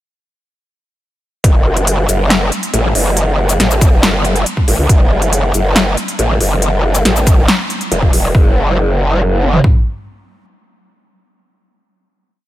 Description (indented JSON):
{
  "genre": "heavy wobble dubstep",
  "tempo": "139 BPM",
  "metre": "4/4",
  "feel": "half-time",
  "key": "F# minor",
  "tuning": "A4 = 439 Hz",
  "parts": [
    { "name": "growl bass", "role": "bass", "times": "1.4-9.6 s", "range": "E1 to C#2", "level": "-13 LUFS", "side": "equal", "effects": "chorus, overdrive" },
    { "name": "big-room dance drum kit", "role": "drums", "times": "1.4-8.2 s", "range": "handclaps, hi-hat, shaker, snare drum", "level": "-17 LUFS", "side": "left 1 dB", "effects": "overdrive, studio reverb" },
    { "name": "dubstep drum kit", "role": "drums", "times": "1.4-9.7 s", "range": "kick drum, toms", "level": "-11 LUFS", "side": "equal", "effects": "studio reverb" }
  ],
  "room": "light reverb",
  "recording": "none",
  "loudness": "-10 LUFS",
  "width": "side -14 dB against mid",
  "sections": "1.4-8.3 drop; 8.3-11.8 final note",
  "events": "drop 1.4-8.3",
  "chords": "none"
}